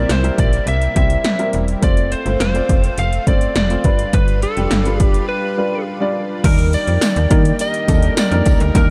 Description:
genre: 1980s-style pop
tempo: 104 BPM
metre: 4/4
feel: straight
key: unclear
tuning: A4 = 440 Hz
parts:
  - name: lightly driven lead guitar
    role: melody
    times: 0.0-8.9 s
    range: A4 to F5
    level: -24 LUFS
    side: equal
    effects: digital delay
  - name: warm baby grand piano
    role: accompaniment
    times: 0.0-8.9 s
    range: G3 to D5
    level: -25 LUFS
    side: equal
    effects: none
  - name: lush unison pad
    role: sustained chords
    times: 0.0-8.9 s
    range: C3 to B4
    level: -31 LUFS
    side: equal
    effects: chorus
  - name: slap-like FM bass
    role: bass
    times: 0.0-8.9 s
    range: E1 to Eb3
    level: -20 LUFS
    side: equal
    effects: none
  - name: 80s electronic pad drums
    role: drums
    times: 0.1-8.9 s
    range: crash cymbal, hi-hat, kick drum, snare drum, tambourine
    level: -18 LUFS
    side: equal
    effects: none
  - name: tambourine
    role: percussion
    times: 6.7-8.9 s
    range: none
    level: -38 LUFS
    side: equal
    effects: none
  - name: warm horn section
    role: stabs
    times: 7.6-8.9 s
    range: G3 to Bb4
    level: -30 LUFS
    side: equal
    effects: none
room: light reverb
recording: dark, warm production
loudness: -16 LUFS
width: mono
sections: 0.0-6.4 A section; 6.4-8.9 B section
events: break 5.3-6.4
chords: 0.0 C7; 1.8 F; 3.8 G7; 6.4 Ebmaj7

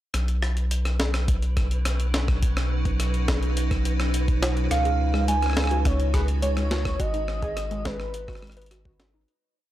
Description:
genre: IDM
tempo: 105 BPM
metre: 4/4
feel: straight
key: B major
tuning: A4 = 441 Hz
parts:
  - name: icy glass pad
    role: sustained chords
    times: 1.5-9.3 s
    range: B2 to A#5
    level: -32 LUFS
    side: right 2 dB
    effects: chorus, built-in reverb, vintage 12-bit sampler grit
  - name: round analog bass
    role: bass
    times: 0.1-9.3 s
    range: G#1 to C#2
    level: -25 LUFS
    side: equal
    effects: none
  - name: jungle sampler-style drum kit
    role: drums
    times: 0.1-9.4 s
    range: hi-hat, rim click, snare drum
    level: -30 LUFS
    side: left 1 dB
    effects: none
  - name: flickering grainy texture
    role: texture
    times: 0.4-9.3 s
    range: B4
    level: -41 LUFS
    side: right 2 dB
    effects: built-in reverb
  - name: electronic kick drum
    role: drums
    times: 1.3-9.0 s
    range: none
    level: -26 LUFS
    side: equal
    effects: none
  - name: warm velvety synth lead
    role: melody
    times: 4.7-8.7 s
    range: B4 to G#5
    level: -28 LUFS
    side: right 2 dB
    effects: chorus, tape echo
  - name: warbly dusty pluck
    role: arpeggios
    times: 4.9-9.2 s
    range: G#3 to B4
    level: -35 LUFS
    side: left 2 dB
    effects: chorus, tape echo
room: digital ambience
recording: dry, gritty hardware recording, transformer saturation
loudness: -22 LUFS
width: side -14 dB against mid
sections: 0.1-9.3 groove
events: fade-out 6.2-9.3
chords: 0.1 Badd9; 4.7 C#7sus4; 7.0 G#m7

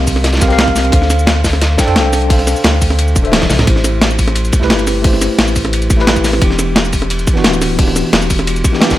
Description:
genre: liquid drum and bass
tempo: 175 BPM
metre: 4/4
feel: straight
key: A minor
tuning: A4 = 440 Hz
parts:
  - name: tine electric piano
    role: accompaniment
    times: 0.0-9.0 s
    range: E3 to G5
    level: -17 LUFS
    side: equal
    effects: medium stereo tremolo, dub echo
  - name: warm sub bass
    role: bass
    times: 0.0-9.0 s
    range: D1 to F2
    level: -16 LUFS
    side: equal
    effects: none
  - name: breakbeat sampler-style drum kit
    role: drums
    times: 0.1-9.0 s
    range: cabasa, hi-hat, snare drum, toms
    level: -15 LUFS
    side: equal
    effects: none
  - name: crunchy breakbeat drum kit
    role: drums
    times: 0.1-9.0 s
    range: hi-hat, ride cymbal, snare drum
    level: -20 LUFS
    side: equal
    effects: high-pass filter on cymbals, high-pass filter on hats, high-pass filter on snare, high-pass filter on room
  - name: electronic kick drum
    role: drums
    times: 0.1-9.0 s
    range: none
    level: -14 LUFS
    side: equal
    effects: none
room: studio reverb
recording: none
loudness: -10 LUFS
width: side -14 dB against mid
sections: 0.0-3.7 A section; 3.7-9.0 A section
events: drop 0.0-3.7, 3.7-9.0; drum fill 3.3-3.7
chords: 0.0 Cm7; 0.9 Dm7; 3.7 Am7; 6.4 Em7

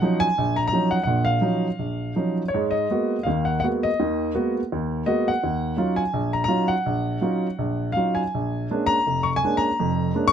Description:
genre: solo jazz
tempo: 167 BPM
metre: 4/4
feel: swing 63% on 8ths, rubato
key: Eb minor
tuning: A4 = 441 Hz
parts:
  - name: warm upright piano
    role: solo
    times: 0.0-10.3 s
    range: F1 to C#6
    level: -20 LUFS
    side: equal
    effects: none
room: light reverb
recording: close, detailed microphones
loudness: -21 LUFS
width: side -8 dB against mid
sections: 0.0-10.3 A section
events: none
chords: 0.0 Ebm9; 2.5 Abm9; 5.4 Ebm9; 8.3 Bb7#9

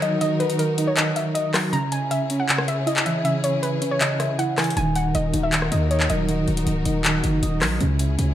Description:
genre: hip hop, trap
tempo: 158 BPM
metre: 4/4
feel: half-time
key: Eb phrygian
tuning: A4 = 439 Hz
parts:
  - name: soft round pluck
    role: melody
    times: 0.0-6.2 s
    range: Bb4 to Bb5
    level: -25 LUFS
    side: left 1 dB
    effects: chorus, low-pass filter
  - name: soft electric-piano-like synth keys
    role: accompaniment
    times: 0.0-8.3 s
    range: Db3 to Eb5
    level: -24 LUFS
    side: right 2 dB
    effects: chorus, tremolo, low-pass filter
  - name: warm symphonic string section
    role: sustained chords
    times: 0.0-8.3 s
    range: Db3 to Bb4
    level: -31 LUFS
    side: left 2 dB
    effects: none
  - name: booming analog drum machine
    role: drums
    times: 0.0-8.3 s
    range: handclaps, hi-hat, rim click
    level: -25 LUFS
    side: left 2 dB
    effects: none
  - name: hard-hitting 808-style bass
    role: bass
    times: 4.8-8.3 s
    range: Db1 to Eb2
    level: -24 LUFS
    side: left 1 dB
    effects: none
room: light reverb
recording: dark, warm production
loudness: -19 LUFS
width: side -11 dB against mid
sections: 0.0-8.3 A section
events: break 0.0-4.8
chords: 0.0 Ebm; 1.7 Dbm; 4.8 Ebm; 7.8 Dbm

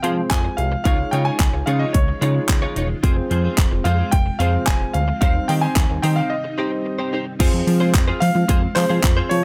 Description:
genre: dance-pop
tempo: 110 BPM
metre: 4/4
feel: straight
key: F minor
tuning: A4 = 440 Hz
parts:
  - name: clear concert grand piano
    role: melody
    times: 0.0-9.4 s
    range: C5 to Ab5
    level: -27 LUFS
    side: equal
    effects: digital delay
  - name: bell-like tine electric piano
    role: accompaniment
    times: 0.0-9.4 s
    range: G3 to Db5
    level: -29 LUFS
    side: equal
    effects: sidechain pumping
  - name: string machine, cellos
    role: sustained chords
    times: 0.0-9.4 s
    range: Db3 to Ab4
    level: -33 LUFS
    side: equal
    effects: none
  - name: direct-recorded clean electric guitar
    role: riff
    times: 0.0-9.3 s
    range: Ab3 to Db5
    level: -30 LUFS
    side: equal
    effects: ensemble chorus
  - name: fat analog bass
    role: bass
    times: 0.0-9.4 s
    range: E1 to F3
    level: -23 LUFS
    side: equal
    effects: sidechain pumping
  - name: pop drum kit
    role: drums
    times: 0.0-9.4 s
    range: crash cymbal, handclaps, hi-hat, kick drum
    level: -21 LUFS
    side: equal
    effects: none
room: light reverb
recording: none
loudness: -19 LUFS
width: mono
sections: 0.0-7.4 A section; 7.4-9.4 B section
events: break 6.3-7.4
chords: 0.0 Fm; 0.9 Dbadd9; 3.0 Fm; 5.2 Cm/Eb; 7.4 Fm

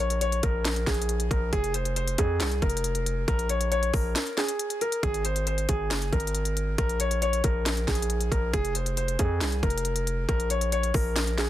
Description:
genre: hip hop, trap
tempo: 137 BPM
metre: 4/4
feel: half-time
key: Bb minor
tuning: A4 = 438 Hz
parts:
  - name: felt-muted upright piano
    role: melody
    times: 0.0-11.5 s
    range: Ab4 to Db5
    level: -29 LUFS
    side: left 1 dB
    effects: tape echo
  - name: distorted 808-style bass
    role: bass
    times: 0.0-11.5 s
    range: F1 to F2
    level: -28 LUFS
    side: equal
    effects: distortion
  - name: trap drum kit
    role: drums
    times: 0.1-11.5 s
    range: handclaps, hi-hat, kick drum, snare drum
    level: -28 LUFS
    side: equal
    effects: none
room: little or no reverb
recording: dense, heavily limited modern master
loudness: -24 LUFS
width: side -13 dB against mid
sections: 0.0-11.5 A section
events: break 4.2-5.0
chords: 0.0 Bbm7; 1.5 Fm; 3.3 Bbm7; 5.0 Absus2; 6.8 Bbm7; 8.5 Fm; 10.3 Bbm

